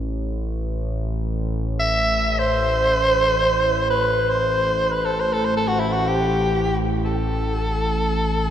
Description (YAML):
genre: world meditative, free-time meditation music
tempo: free time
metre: none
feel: none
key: A dorian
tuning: A4 = 440 Hz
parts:
  - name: analog drone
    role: drone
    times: 0.0-8.5 s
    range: A1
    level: -23 LUFS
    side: equal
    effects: chorus
  - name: raspy soprano saxophone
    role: melody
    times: 1.8-8.5 s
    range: E4 to E5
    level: -19 LUFS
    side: equal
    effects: shimmer reverb, diffuse ambient delay
room: wet cathedral reverb, RT60 5.0 s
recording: in a vast, echoing space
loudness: -18 LUFS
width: side -10 dB against mid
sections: 0.0-8.5 A section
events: none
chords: none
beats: free time